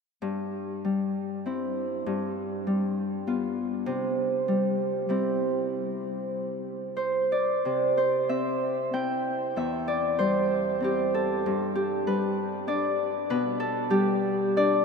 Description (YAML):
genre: classical, solo harp piece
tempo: 85-102 BPM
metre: 3/4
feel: rubato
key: C major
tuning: A4 = 439 Hz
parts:
  - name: Celtic harp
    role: solo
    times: 0.2-14.8 s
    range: E2 to G5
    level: -25 LUFS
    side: equal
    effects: none
room: wet huge ambient reverb, RT60 8.1 s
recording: in a vast, echoing space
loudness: -25 LUFS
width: side -5 dB against mid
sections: 0.2-7.7 A section; 7.7-14.8 B section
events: none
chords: 0.2 C/G; 2.1 G7; 3.9 C; 9.6 C/E; 11.5 G; 13.3 G/B